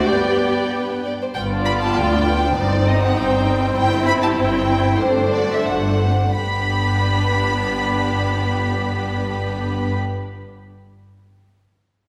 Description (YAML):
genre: quick classical-period movement for string orchestra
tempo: 84-100 BPM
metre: 2/4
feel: rubato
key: G major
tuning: A4 = 440 Hz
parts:
  - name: warm chamber violin section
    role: melody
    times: 0.0-9.9 s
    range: C5 to B5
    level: -26 LUFS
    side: equal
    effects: none
  - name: warm chamber violin section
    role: second line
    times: 0.0-9.9 s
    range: G3 to D5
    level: -27 LUFS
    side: equal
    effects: none
  - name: warm symphonic viola section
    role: accompaniment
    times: 0.0-9.9 s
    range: A3 to G4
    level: -25 LUFS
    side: equal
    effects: none
  - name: rich chamber double bass section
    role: bass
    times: 0.0-9.9 s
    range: G1 to G2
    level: -29 LUFS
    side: equal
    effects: none
  - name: warm chamber cello section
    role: bass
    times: 0.0-9.9 s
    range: D2 to B3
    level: -26 LUFS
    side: equal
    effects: none
room: wet scoring stage reverb, RT60 1.9 s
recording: heard from further back in the room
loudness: -19 LUFS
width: mono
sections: 0.0-1.4 A section; 1.4-6.4 B section; 6.4-9.2 C section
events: slowing down 3.2-6.4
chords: 0.1 G; 1.4 G7; 2.6 Cm/G; 3.8 C/G; 5.0 D7/G; 6.4 G